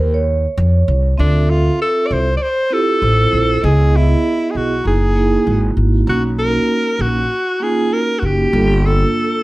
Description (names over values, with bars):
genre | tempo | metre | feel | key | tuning
hip hop, jazz-hop | 98 BPM | 4/4 | swing 60% on 16ths | unclear | A4 = 440 Hz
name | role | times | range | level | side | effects
vibraphone with soft mallets | accompaniment | 0.0-9.4 s | G#3 to E5 | -19 LUFS | right 3 dB | none
upright bass | bass | 0.0-9.0 s | F#1 to F2 | -15 LUFS | equal | none
breathy alto saxophone | melody | 1.2-9.4 s | D4 to D5 | -18 LUFS | equal | slapback echo, plate reverb
room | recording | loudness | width
light reverb | none | -13 LUFS | side -18 dB against mid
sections
0.0-1.2 A section; 1.2-9.4 B section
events
vibraphone solo 0.0-1.2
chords
0.0 Ebsus2; 1.2 Dm9; 3.6 C#m7; 4.9 F#13; 6.1 Bmaj7; 8.5 Gm7